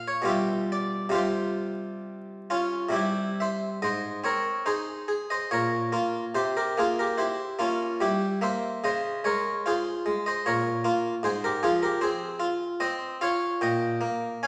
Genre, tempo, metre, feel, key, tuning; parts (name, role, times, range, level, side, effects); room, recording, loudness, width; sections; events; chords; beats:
classical, baroque-style suite movement for harpsichord; 67-77 BPM; 3/4; rubato; F minor; A4 = 439 Hz
harpsichord; solo; 0.0-14.5 s; Ab2 to Ab5; -28 LUFS; equal
wet recital hall reverb, RT60 1.3 s; vinyl crackle; -28 LUFS; mono
0.0-3.8 A section; 3.8-14.5 B section
0.3 G7/B; 1.2 Csus4; 3.0 C; 3.8 Ab; 5.5 Bbm; 6.4 C7; 8.8 Db; 10.5 Bbm; 11.2 Fm/Ab; 13.6 N.C.
0.30 | 1.17 2.06 2.95 | 3.83 4.68 5.52 | 6.35 7.18 8.01 | 8.84 9.65 10.46 | 11.24 12.03 12.81 | 13.62 14.42